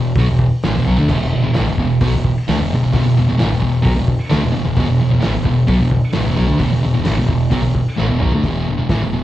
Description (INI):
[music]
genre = garage rock duo or trio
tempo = 131 BPM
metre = 4/4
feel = straight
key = unclear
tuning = A4 = 440 Hz
[part]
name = fuzz guitar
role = riff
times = 0.0-9.2 s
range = E2 to A3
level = -16 LUFS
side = equal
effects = distortion
[part]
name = growling picked electric bass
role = bass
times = 0.0-9.2 s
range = E1 to D2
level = -20 LUFS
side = equal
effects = overdrive
[part]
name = cloth-damped thuddy drum kit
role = drums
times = 0.2-9.0 s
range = crash cymbal, hi-hat, kick drum, snare drum, toms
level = -21 LUFS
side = equal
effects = none
[sound]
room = moderate large studio reverb, RT60 1.0 s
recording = band playing live in one room, cassette tape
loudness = -13 LUFS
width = side -14 dB against mid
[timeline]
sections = 0.0-8.4 A section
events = drum fill 8.0-8.4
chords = 0.0 E5